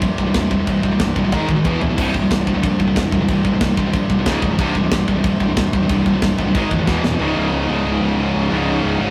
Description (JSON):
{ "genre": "heavy metal", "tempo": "184 BPM", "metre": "4/4", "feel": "straight", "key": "unclear", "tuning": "A4 = 439 Hz", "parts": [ { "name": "heavy high-gain guitar", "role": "riff", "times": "0.0-9.1 s", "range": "C2 to Ab3", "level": "-28 LUFS", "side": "equal", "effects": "none" }, { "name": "high-gain distorted guitar", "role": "riff", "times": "0.0-9.1 s", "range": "C2 to Ab3", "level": "-21 LUFS", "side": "equal", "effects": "distortion" }, { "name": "tight distorted guitar", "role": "riff", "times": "0.0-9.1 s", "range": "C2 to Ab3", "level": "-28 LUFS", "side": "equal", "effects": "distortion" }, { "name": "fuzz picked electric bass", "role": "bass", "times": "0.0-9.1 s", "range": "C1 to Bb1", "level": "-25 LUFS", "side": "equal", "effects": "overdrive" }, { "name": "tight metal drum kit", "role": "drums", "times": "0.0-7.1 s", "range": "crash cymbal, kick drum, snare drum, splash cymbal, toms", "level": "-24 LUFS", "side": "equal", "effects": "none" } ], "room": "light reverb", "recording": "rough rehearsal-room recording, warm saturation", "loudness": "-18 LUFS", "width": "mono", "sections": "0.0-7.2 A section; 7.2-9.1 B section", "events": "drum fill 1.7-2.0, 6.9-7.2", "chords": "0.0 C; 1.3 Ab5; 1.7 E5; 2.0 C5; 4.3 Db5; 4.6 C5; 6.5 Ab5; 6.9 E5; 7.2 Db5" }